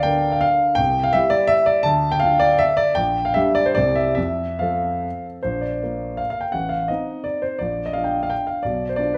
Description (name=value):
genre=classical, romantic triple-time dance for piano with dotted rhythms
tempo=129-186 BPM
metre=3/4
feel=rubato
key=F major, Bb major from 5.4 s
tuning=A4 = 440 Hz
part: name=warm grand piano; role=solo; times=0.0-9.2 s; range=A1 to A5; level=-20 LUFS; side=equal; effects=none
room=wet large studio reverb, RT60 0.9 s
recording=heard from further back in the room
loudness=-20 LUFS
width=mono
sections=0.0-5.4 A section; 5.4-9.2 B section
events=none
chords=0.0 Bb/D; 0.8 C; 1.9 Dm; 3.0 Gm/Bb; 3.8 C; 4.2 F; 5.4 Bb; 6.5 Adim; 7.6 Bb; 8.6 Bdim